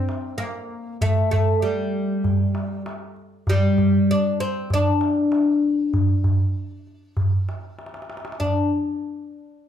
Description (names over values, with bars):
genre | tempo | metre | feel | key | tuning
Turkish makam ensemble | 97 BPM | 4/4 | straight | D makam ussak | A4 = 440 Hz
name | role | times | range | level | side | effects
oud | melody | 0.0-8.7 s | G3 to D4 | -21 LUFS | left 2 dB | none
darbuka | percussion | 0.1-8.7 s | none | -22 LUFS | right 1 dB | none
room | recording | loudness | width
wet large studio reverb, RT60 0.9 s | band playing live in one room | -19 LUFS | side -9 dB against mid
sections
0.0-8.4 A section; 8.4-9.7 B section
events
drum fill 7.8-8.4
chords
none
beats
0.39 | 1.00 1.62 2.23 2.85 | 3.47 4.08 4.70 5.32 | 5.93 6.55 7.17 7.79 | 8.40